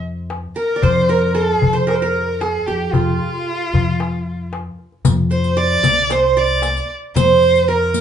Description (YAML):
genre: Arabic maqam ensemble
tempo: 114 BPM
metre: 4/4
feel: straight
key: F maqam rast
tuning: A4 = 439 Hz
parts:
  - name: qanun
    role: second line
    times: 0.0-8.0 s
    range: F4 to D5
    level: -19 LUFS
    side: right 6 dB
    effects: none
  - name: upright bass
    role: bass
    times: 0.0-8.0 s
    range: C2 to F2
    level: -21 LUFS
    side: left 1 dB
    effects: none
  - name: darbuka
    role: percussion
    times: 0.3-7.8 s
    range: none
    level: -21 LUFS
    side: left 4 dB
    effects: none
  - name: dark violin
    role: melody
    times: 0.6-8.0 s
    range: F4 to D5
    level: -18 LUFS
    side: left 1 dB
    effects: plate reverb
  - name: riq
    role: percussion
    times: 5.0-8.0 s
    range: none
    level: -26 LUFS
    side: left 5 dB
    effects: none
room: wet studio reverb, RT60 0.5 s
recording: heard from further back in the room, nothing above 10.8 kHz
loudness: -14 LUFS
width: side -8 dB against mid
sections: 0.0-5.0 A section; 5.0-8.0 B section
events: none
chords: none